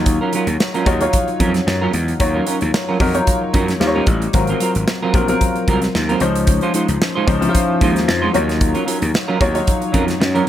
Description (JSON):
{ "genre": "polished 1980s jazz-funk pop", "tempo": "112 BPM", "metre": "4/4", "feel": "swing 54% on 16ths", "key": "Eb dorian", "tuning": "A4 = 440 Hz", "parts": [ { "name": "warm grand piano", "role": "accompaniment", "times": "0.0-10.5 s", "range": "F3 to Db5", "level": "-19 LUFS", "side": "left 2 dB", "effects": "analog chorus" }, { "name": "gritty slap bass", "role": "bass", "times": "0.0-10.4 s", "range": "Ab1 to Gb2", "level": "-20 LUFS", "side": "equal", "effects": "overdrive" }, { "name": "semi-hollow electric guitar", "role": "riff", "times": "0.1-10.5 s", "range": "Gb3 to C5", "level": "-21 LUFS", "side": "right 4 dB", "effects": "lush chorus" }, { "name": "modern studio drum kit", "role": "drums", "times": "0.1-10.5 s", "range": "hi-hat, kick drum, snare drum", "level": "-20 LUFS", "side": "equal", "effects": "none" }, { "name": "congas", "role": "percussion", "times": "0.1-10.3 s", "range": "none", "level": "-32 LUFS", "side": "left 2 dB", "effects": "none" } ], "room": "small room ambience", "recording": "none", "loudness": "-14 LUFS", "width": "side -11 dB against mid", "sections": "0.0-10.5 A section", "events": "none", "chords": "0.0 Ebm9; 3.8 Eb9; 4.3 Ab13; 6.2 Dbmaj9; 8.3 Ebm9" }